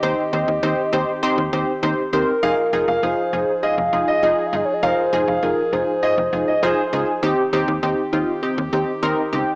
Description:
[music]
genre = pop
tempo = 100 BPM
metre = 4/4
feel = straight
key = F minor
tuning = A4 = 439 Hz
[part]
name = hollow clarinet-like synth lead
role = melody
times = 0.0-6.9 s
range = Bb4 to F5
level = -21 LUFS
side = equal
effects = chorus, cassette tape
[part]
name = funky polysynth comp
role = accompaniment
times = 0.0-9.5 s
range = C4 to C5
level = -21 LUFS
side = equal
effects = chorus
[part]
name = mellow brass ensemble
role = sustained chords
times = 0.0-9.6 s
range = Eb3 to Ab4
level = -28 LUFS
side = equal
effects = none
[part]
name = slap-like FM bass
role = bass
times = 0.0-9.4 s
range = F1 to Eb2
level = -26 LUFS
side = equal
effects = none
[part]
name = warm concert grand piano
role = second line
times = 2.4-7.1 s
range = C5 to F5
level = -22 LUFS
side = right 1 dB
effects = analog delay
[sound]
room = wet spring reverb, RT60 1.3 s, small room ambience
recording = home recording on cassette, small speaker sound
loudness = -17 LUFS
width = side -28 dB against mid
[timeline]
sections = 0.0-2.4 A section; 2.4-9.6 B section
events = none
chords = 0.0 Cm; 2.4 Fm7; 7.2 Cm

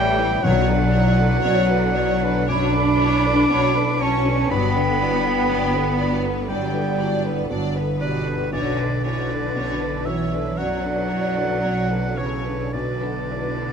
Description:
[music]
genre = cinematic, emotional film score for orchestra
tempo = 59 BPM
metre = 4/4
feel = rubato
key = B minor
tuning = A4 = 440 Hz
[part]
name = rich symphonic violin section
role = melody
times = 0.0-13.7 s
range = A4 to D5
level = -31 LUFS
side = left 6 dB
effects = none
[part]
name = bright oboe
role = second line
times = 0.0-13.7 s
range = B4 to D6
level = -26 LUFS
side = right 2 dB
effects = none
[part]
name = large flute ensemble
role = second line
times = 0.0-13.7 s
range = G4 to B5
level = -28 LUFS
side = right 1 dB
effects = none
[part]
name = warm symphonic violin section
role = second line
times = 0.0-13.7 s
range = B3 to D4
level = -32 LUFS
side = left 3 dB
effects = none
[part]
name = felt-muted upright piano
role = accompaniment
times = 0.0-13.7 s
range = B1 to D5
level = -30 LUFS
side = left 2 dB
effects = none
[part]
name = warm symphonic viola section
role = accompaniment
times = 0.0-13.7 s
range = D3 to A3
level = -31 LUFS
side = right 4 dB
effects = none
[part]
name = mellow French horn section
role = sustained chords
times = 0.0-13.7 s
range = B2 to D4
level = -28 LUFS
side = left 5 dB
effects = none
[part]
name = concert harp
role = arpeggios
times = 0.0-13.7 s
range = G2 to C#6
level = -33 LUFS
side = left 13 dB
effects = none
[part]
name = rich symphonic cello section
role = bass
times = 0.0-13.7 s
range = B2 to D4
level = -25 LUFS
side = right 2 dB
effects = none
[part]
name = rich symphonic double bass section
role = bass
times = 0.0-13.7 s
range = G1 to B1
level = -26 LUFS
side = right 2 dB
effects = none
[part]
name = timpani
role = percussion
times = 0.4-1.9 s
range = B2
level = -27 LUFS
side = left 2 dB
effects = none
[sound]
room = light reverb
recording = close, detailed microphones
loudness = -18 LUFS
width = side -7 dB against mid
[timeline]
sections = 0.0-13.7 A section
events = none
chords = 0.4 Bmadd9; 4.5 Gmaj7; 8.5 Bmadd9; 12.7 Bm7

